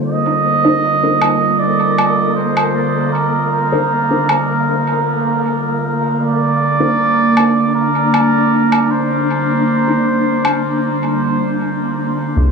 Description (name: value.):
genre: ambient dub.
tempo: 78 BPM.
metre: 4/4.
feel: straight.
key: C minor.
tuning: A4 = 440 Hz.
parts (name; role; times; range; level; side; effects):
warbly tape-like pad; sustained chords; 0.0-12.5 s; D3 to Bb4; -18 LUFS; right 1 dB; chorus, built-in reverb.
wind-like tuned noise texture; texture; 0.0-12.4 s; Bb3 to C5; -21 LUFS; left 2 dB; built-in reverb.
trumpet with cup mute; melody; 0.1-11.6 s; Bb4 to Eb5; -16 LUFS; right 3 dB; dub echo.
filtered dub chord stab; stabs; 0.6-10.0 s; D4 to C5; -22 LUFS; left 1 dB; phaser, cassette tape, dub echo.
woodblock; drums; 1.2-10.6 s; none; -21 LUFS; left 1 dB; dub echo.
round analog bass; bass; 12.4-12.5 s; C2; -11 LUFS; equal; none.
room: moderate huge ambient reverb, RT60 4.4 s.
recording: small room ambience.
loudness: -13 LUFS.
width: side -5 dB against mid.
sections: 0.0-12.4 A section.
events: none.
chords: 0.0 Cm9.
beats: | 0.06 0.83 1.60 2.37 | 3.14 3.91 4.68 5.45 | 6.22 6.99 7.75 8.52 | 9.29 10.06 10.83 11.60 | 12.37.